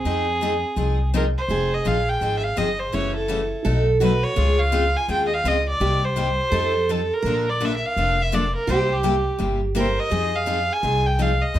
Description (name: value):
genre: acoustic string swing (jazz manouche)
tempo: 167 BPM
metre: 4/4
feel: swing 60% on 8ths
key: F minor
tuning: A4 = 440 Hz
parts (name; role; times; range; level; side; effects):
- warm violin; melody; 0.0-11.6 s; G4 to Ab5; -24 LUFS; right 1 dB; plate reverb
- picked steel-string acoustic guitar; second line; 0.0-11.6 s; C4 to Bb4; -27 LUFS; right 4 dB; none
- picked steel-string acoustic guitar; accompaniment; 0.1-11.6 s; B2 to A4; -26 LUFS; left 3 dB; none
- upright bass; bass; 0.1-11.6 s; F1 to F2; -24 LUFS; equal; none
room: moderate small room ambience, RT60 0.5 s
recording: none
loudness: -19 LUFS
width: side -12 dB against mid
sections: 0.0-1.5 A section; 1.5-11.6 B section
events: none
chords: 0.0 Fm7; 2.9 Gbm7; 3.6 B7; 4.4 Dbmaj7; 5.8 Cm7; 6.5 F7; 7.2 Bbmaj7; 8.7 C7; 10.1 Fm7